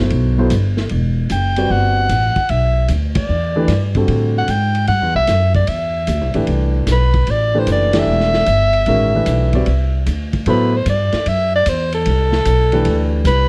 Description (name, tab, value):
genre	modal jazz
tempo	151 BPM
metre	4/4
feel	swing 67% on 8ths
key	A dorian from 10.5 s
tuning	A4 = 441 Hz
part	warm baby grand piano	accompaniment	0.0-13.2 s	B2 to D5	-21 LUFS	equal	none
part	upright bass	bass	0.0-13.5 s	E1 to A2	-19 LUFS	equal	none
part	vintage drum kit	drums	0.1-13.4 s	hi-hat, kick drum, ride cymbal, snare drum	-28 LUFS	equal	none
part	clear soprano saxophone	melody	1.3-13.5 s	A4 to G5	-20 LUFS	equal	none
room	light reverb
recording	dark, warm production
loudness	-16 LUFS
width	mono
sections	0.0-10.5 A section; 10.5-13.5 B section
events	band accent 3.1, 7.9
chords	0.0 Em11; 4.1 Am11